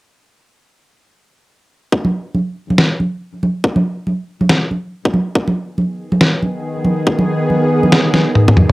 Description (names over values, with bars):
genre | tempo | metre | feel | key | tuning
deep dubstep | 140 BPM | 4/4 | swing 59% on 16ths, half-time | G# minor | A4 = 439 Hz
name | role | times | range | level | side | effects
electronic kick drum | drums | 1.9-8.6 s | none | -17 LUFS | equal | high-pass filter on kick, cassette tape, high-pass filter on room
congas | percussion | 2.0-8.7 s | none | -18 LUFS | right 1 dB | dub echo
trip hop sampler-style drum kit | drums | 2.8-8.7 s | snare drum, toms | -11 LUFS | equal | cassette tape
bowed-like drone | sustained chords | 6.3-8.7 s | D#3 to G#4 | -17 LUFS | equal | built-in reverb, cassette tape
room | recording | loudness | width
moderate studio reverb, RT60 0.5 s | home recording on cassette | -14 LUFS | side -19 dB against mid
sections
1.9-8.7 A section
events
drum fill 8.4-8.7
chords
1.9 G#m